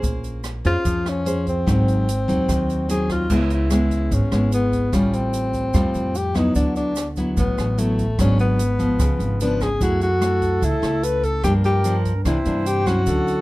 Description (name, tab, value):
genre	bossa nova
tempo	147 BPM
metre	4/4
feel	straight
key	C# phrygian from 3.3 s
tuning	A4 = 440 Hz
part	nylon-string guitar	accompaniment	0.0-13.4 s	G2 to C5	-23 LUFS	equal	none
part	upright bass	bass	0.0-13.4 s	Ab1 to G2	-23 LUFS	equal	none
part	open jazz drum kit	drums	0.0-13.4 s	crash cymbal, hi-hat, kick drum, rim click	-28 LUFS	equal	none
part	tube shaker	percussion	0.0-13.4 s	none	-40 LUFS	right 7 dB	none
part	breathy tenor saxophone	melody	0.7-13.4 s	A3 to B4	-23 LUFS	left 2 dB	none
part	reedy concert flute	second line	9.8-13.4 s	A4 to C5	-29 LUFS	right 4 dB	none
room	light reverb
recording	dark, warm production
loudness	-18 LUFS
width	side -19 dB against mid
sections	0.0-3.3 A section; 3.3-13.4 B section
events	none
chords	0.0 Bbm9; 1.7 Ab7; 3.3 C#m7; 4.9 Am7; 6.6 D69; 8.2 G#m7b5; 9.0 C#7b9; 9.8 F#m9; 11.4 Gm7; 12.2 C9